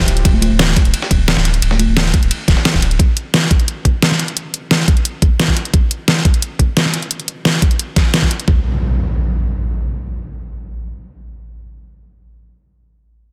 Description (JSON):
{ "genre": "liquid drum and bass", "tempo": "175 BPM", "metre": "4/4", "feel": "straight", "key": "unclear", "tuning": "A4 = 441 Hz", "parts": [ { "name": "warm sub bass", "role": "bass", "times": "0.0-3.0 s", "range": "D1", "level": "-18 LUFS", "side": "equal", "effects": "none" }, { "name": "downlifter and impact", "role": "sound effects", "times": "0.0-0.3, 8.5-12.5 s", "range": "none", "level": "-22 LUFS", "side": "equal", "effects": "none" }, { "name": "dusty soul sampler-style drum kit", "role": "drums", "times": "0.1-2.9 s", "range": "ride cymbal, snare drum", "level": "-26 LUFS", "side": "equal", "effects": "high-pass filter on cymbals, high-pass filter on snare" }, { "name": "pop drum kit", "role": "drums", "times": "0.1-8.5 s", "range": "hi-hat, snare drum", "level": "-18 LUFS", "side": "equal", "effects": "overdrive" }, { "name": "electronic kick drum", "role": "drums", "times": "0.2-8.5 s", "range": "none", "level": "-16 LUFS", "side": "equal", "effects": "overdrive" }, { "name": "congas", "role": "percussion", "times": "0.3-1.9 s", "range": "none", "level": "-24 LUFS", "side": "equal", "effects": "none" } ], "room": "light reverb, digital ambience", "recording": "dense, heavily limited modern master", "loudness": "-15 LUFS", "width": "mono", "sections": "0.0-8.5 A section; 8.5-11.2 B section", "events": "none", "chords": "none" }